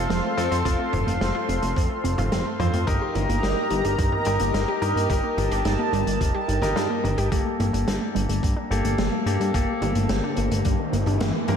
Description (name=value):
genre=synthwave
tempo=108 BPM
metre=4/4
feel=straight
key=G minor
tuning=A4 = 440 Hz
part: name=warm analog pad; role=sustained chords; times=0.0-11.6 s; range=Bb3 to C6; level=-28 LUFS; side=equal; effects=chorus, sidechain pumping
part: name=analog pluck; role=arpeggios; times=0.0-11.6 s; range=F3 to G4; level=-30 LUFS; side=right 2 dB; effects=chorus, ping-pong delay
part: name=bright grand piano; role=stabs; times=0.0-11.6 s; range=Bb3 to C5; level=-29 LUFS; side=left 3 dB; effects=low-pass filter, ping-pong delay
part: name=fat analog bass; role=bass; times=0.0-11.6 s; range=F1 to G2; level=-25 LUFS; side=equal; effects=none
part: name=vintage drum kit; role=drums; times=0.1-11.6 s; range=hi-hat, snare drum, toms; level=-30 LUFS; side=equal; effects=none
part: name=electronic kick drum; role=drums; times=0.7-10.8 s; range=none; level=-25 LUFS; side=equal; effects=none
part: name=riser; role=sound effects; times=8.5-11.6 s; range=none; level=-33 LUFS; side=left 2 dB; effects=none
room=wet lush hall reverb, RT60 1.6 s, studio ambience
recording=dreamy mix soaked in reverb, faint mains hum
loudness=-21 LUFS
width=side -7 dB against mid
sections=0.0-7.3 A section; 7.3-11.6 B section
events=filter sweep on grand piano 7.3-11.6; riser 8.5-11.6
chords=0.0 F; 2.9 Eb/G; 7.3 Gmadd9